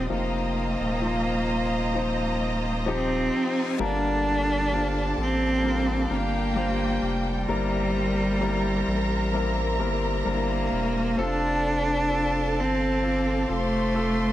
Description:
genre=pop ballad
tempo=65 BPM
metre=4/4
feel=straight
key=unclear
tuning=A4 = 439 Hz
part: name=rich cello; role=melody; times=0.0-14.3 s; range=G3 to D4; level=-26 LUFS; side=right 1 dB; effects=none
part: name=warm symphonic violin section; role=second line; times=0.0-14.3 s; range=F4 to C6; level=-32 LUFS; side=right 1 dB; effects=none
part: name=warm concert grand piano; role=accompaniment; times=0.0-14.3 s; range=G2 to C5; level=-30 LUFS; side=left 4 dB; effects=none
part: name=rich studio string section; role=sustained chords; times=0.0-14.3 s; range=Bb3 to Eb6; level=-37 LUFS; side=left 1 dB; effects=none
part: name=saturated sub bass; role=bass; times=0.0-14.3 s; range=Eb1 to A1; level=-29 LUFS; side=equal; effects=none
part: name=reverse cymbal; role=sound effects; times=3.3-3.8 s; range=none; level=-41 LUFS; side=left 6 dB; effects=none
room=light reverb, studio ambience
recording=none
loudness=-23 LUFS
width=side -13 dB against mid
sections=0.0-3.8 A section; 3.8-14.3 B section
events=reverse cymbal 3.3-3.8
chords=0.1 F7sus4; 3.8 Gm7; 7.5 C7/G; 11.2 F

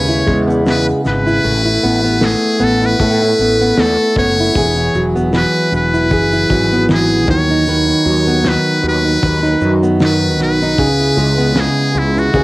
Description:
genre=acoustic pop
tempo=77 BPM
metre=4/4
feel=swing 55% on 16ths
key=E major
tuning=A4 = 440 Hz
part: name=trumpet with metal mute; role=melody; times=0.0-12.4 s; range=E4 to C#5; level=-17 LUFS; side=left 1 dB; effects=cassette tape
part: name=fingerpicked plugged-in steel-string acoustic guitar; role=accompaniment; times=0.0-12.4 s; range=C#3 to B4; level=-14 LUFS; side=right 1 dB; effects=cassette tape
part: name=fretless electric bass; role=bass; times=0.0-12.4 s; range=E1 to A2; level=-19 LUFS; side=equal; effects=ensemble chorus
part: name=cloth-damped thuddy drum kit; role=drums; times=0.1-12.4 s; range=kick drum, shaker, snare drum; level=-20 LUFS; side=equal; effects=vintage 12-bit sampler grit, cassette tape
room=light reverb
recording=home recording on cassette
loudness=-11 LUFS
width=side -20 dB against mid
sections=0.0-12.4 A section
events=none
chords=0.0 C#m7; 1.4 Asus2; 4.6 Eadd9; 7.3 B/D#; 10.8 C#m7

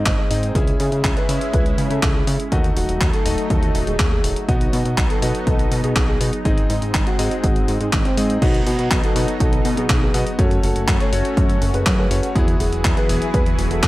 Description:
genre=italo disco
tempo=122 BPM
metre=4/4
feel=straight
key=unclear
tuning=A4 = 440 Hz
part: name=dark concert grand piano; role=melody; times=0.0-13.9 s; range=B3 to D#5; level=-26 LUFS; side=equal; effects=vintage 12-bit sampler grit, tape echo
part: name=lush unison pad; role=sustained chords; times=0.0-13.9 s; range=E3 to B4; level=-27 LUFS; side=equal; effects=chorus, phaser
part: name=warm electric grand piano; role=stabs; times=0.0-13.9 s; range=F#3 to E5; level=-27 LUFS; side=left 1 dB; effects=vintage 12-bit sampler grit
part: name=fat analog bass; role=bass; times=0.0-13.9 s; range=D#1 to C#3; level=-22 LUFS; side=equal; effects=none
part: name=electronic kick drum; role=drums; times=0.1-13.9 s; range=none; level=-20 LUFS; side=equal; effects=overdrive
part: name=gated 80s digital drum machine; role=drums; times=0.1-13.9 s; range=crash cymbal, handclaps, hi-hat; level=-25 LUFS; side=equal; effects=gated reverb
room=little or no reverb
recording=dry, gritty hardware recording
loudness=-16 LUFS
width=side -18 dB against mid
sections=0.0-8.4 A section; 8.4-13.9 B section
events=none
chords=0.0 G#; 0.6 C#m; 2.5 D#dim; 4.5 B; 6.5 G#; 8.4 B; 10.4 F#m; 12.4 Eadd9

